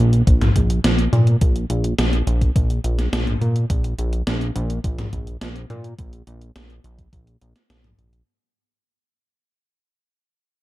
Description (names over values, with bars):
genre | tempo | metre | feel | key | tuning
synthwave | 105 BPM | 4/4 | straight | unclear | A4 = 440 Hz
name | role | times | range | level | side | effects
chorused synth bass | bass | 0.0-8.2 s | Bb1 to Bb2 | -19 LUFS | equal | none
impact | sound effects | 0.0-1.4 s | none | -33 LUFS | equal | none
gated 80s digital drum machine | drums | 0.1-8.2 s | hi-hat, snare drum, toms | -24 LUFS | equal | gated reverb, gated reverb snare
electronic kick drum | drums | 0.3-7.2 s | none | -18 LUFS | equal | none
room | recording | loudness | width
little or no reverb | dark, warm production | -17 LUFS | side -17 dB against mid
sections
0.0-8.3 A section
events
fade-out 0.0-8.3; impact 0.0-1.4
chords
none